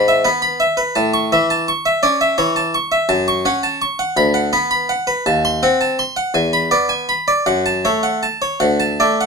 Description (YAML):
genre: classical, baroque-style suite movement for harpsichord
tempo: 55 BPM (dotted quarters)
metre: 6/8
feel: uneven beats, rubato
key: A major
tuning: A4 = 440 Hz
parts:
  - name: harpsichord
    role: solo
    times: 0.0-9.3 s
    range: D2 to C#6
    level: -14 LUFS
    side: equal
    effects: none
room: moderate studio reverb, RT60 0.6 s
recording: minimal, uncompressed stereo recording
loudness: -14 LUFS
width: side -4 dB against mid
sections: 0.0-9.3 A section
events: none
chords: 0.0 E/G#; 1.0 A; 3.1 F#m; 4.2 Bm/D; 5.3 D#dim7; 6.3 E7; 7.5 F#m; 8.6 D